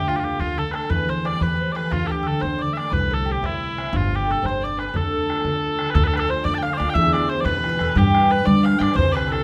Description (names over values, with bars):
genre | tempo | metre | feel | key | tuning
celtic folk, Celtic jig | 119 BPM (dotted quarters) | 6/8 | straight | D dorian | A4 = 443 Hz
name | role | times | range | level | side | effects
mellow small bagpipes | melody | 0.0-9.4 s | E4 to A5 | -27 LUFS | equal | none
clear fiddle | second line | 0.0-9.4 s | E4 to F5 | -34 LUFS | equal | none
mandolin | second line | 0.0-9.4 s | E4 to F5 | -30 LUFS | equal | none
concert harp | accompaniment | 0.0-9.4 s | B2 to B4 | -29 LUFS | equal | none
upright bass | bass | 0.0-9.4 s | G1 to G3 | -27 LUFS | equal | none
bodhran | percussion | 0.1-9.4 s | none | -30 LUFS | equal | none
room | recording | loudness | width
moderate studio reverb, RT60 0.7 s | none | -21 LUFS | mono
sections
0.0-6.0 A section; 6.0-9.4 B section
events
none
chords
0.0 Dm; 0.9 Em; 1.9 D5; 2.9 C; 3.9 G5; 4.9 Dm; 7.0 Em; 8.0 G